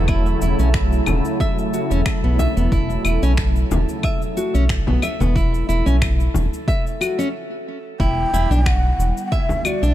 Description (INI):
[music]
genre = organic downtempo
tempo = 91 BPM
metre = 4/4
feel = swing 53% on 16ths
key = unclear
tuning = A4 = 440 Hz
[part]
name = warm analog pad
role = sustained chords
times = 0.0-9.9 s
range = C#3 to E4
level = -26 LUFS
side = right 1 dB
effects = chorus, sidechain pumping
[part]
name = nylon-string guitar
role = arpeggios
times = 0.0-9.9 s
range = B3 to E5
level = -24 LUFS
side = left 1 dB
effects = tape echo
[part]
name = round analog bass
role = bass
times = 0.0-9.9 s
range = E1 to B1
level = -18 LUFS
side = equal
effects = none
[part]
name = drifting glass-harmonics texture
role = texture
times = 0.0-7.3 s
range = A4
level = -34 LUFS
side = right 3 dB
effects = chorus, built-in reverb
[part]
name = electronic claves, cabasa and finger snaps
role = drums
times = 0.1-9.9 s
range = none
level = -28 LUFS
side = left 3 dB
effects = overdrive
[part]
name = electronic kick drum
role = drums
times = 0.1-9.5 s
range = none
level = -22 LUFS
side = equal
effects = overdrive
[part]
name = frame drum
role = percussion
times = 1.1-9.6 s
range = none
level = -26 LUFS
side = left 2 dB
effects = none
[part]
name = breathy mellow ney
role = melody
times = 8.0-9.9 s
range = D5 to G5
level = -24 LUFS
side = equal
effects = ping-pong delay
[sound]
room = studio reverb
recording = dark, warm production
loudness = -16 LUFS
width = side -13 dB against mid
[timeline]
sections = 0.0-8.0 A section; 8.0-9.9 B section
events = stop 7.3-8.0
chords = 0.0 F#m7/E; 8.0 Em7